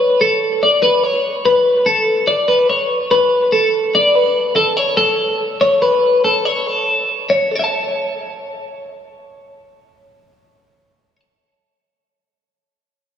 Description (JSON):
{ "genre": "rock", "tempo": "143 BPM", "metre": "4/4", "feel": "straight", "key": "A major", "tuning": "A4 = 440 Hz", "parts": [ { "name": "twelve-string electric guitar", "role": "solo", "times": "0.0-11.2 s", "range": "A4 to A5", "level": "-13 LUFS", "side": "left 1 dB", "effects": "wide subtle chorus, analog delay" } ], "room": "wet church reverb, RT60 3.2 s", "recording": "dreamy mix soaked in reverb, small room ambience", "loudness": "-13 LUFS", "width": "side -8 dB against mid", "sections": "0.0-4.2 A section; 4.2-7.5 B section; 7.5-10.9 C section", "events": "none", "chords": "0.0 Aadd9; 4.2 A" }